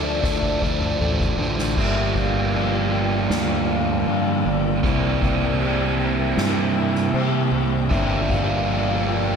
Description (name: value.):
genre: post-rock.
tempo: 78 BPM.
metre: 4/4.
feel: straight.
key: G dorian.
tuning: A4 = 441 Hz.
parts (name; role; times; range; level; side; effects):
clear symphonic string section; sustained chords; 0.0-9.4 s; F3 to A5; -32 LUFS; left 4 dB; none.
twelve-string electric guitar; arpeggios; 0.0-9.4 s; G2 to F4; -31 LUFS; left 6 dB; lush chorus, ping-pong delay.
vibraphone with medium mallets; arpeggios; 0.0-9.4 s; C5 to G5; -29 LUFS; left 2 dB; ping-pong delay.
overdriven electric guitar; riff; 0.0-9.4 s; G2 to E4; -22 LUFS; right 5 dB; phaser.
growling fingered electric bass; bass; 0.0-9.4 s; G1 to C3; -26 LUFS; left 1 dB; overdrive.
soft-mallet drum kit; drums; 0.2-9.2 s; crash cymbal, kick drum, snare drum, toms; -26 LUFS; left 2 dB; none.
room: wet plate reverb, RT60 2.5 s.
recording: dreamy mix soaked in reverb.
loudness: -19 LUFS.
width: side -6 dB against mid.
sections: 0.0-1.8 A section; 1.8-9.4 B section.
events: build-up 0.0-1.8; drum fill 0.2-1.8.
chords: 0.0 Dmadd9; 1.8 Gm7; 4.8 C7; 7.9 Gm7.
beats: 0.23 1.00 | 1.77 2.53 3.30 4.07 | 4.83 5.60 6.37 7.14 | 7.91 8.68.